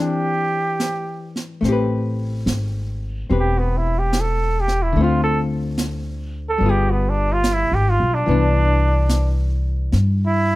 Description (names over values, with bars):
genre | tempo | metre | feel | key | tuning
jazz ballad | 72 BPM | 4/4 | swing 68% on 8ths | A minor | A4 = 440 Hz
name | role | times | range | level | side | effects
clear flugelhorn | melody | 0.0-10.6 s | B3 to A4 | -21 LUFS | right 2 dB | none
archtop guitar, miked and amplified | accompaniment | 0.0-10.6 s | D3 to B4 | -24 LUFS | left 3 dB | none
jazz brush drum kit | drums | 0.8-10.6 s | brushed snare drum, hi-hat, snare drum | -27 LUFS | right 2 dB | none
upright bass | bass | 1.6-10.6 s | E1 to G2 | -20 LUFS | equal | none
room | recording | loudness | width
light reverb | none | -17 LUFS | side -18 dB against mid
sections
0.0-1.6 A section; 1.6-10.6 B section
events
break 0.0-1.6; flugelhorn solo 1.6-10.6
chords
0.0 Cadd9/E; 1.6 Am9; 5.0 Dm7; 6.6 G7b9; 8.3 Cmaj9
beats
0.80 | 1.64 2.47 3.30 4.13 | 4.95 5.78 6.60 7.43 | 8.26 9.08 9.91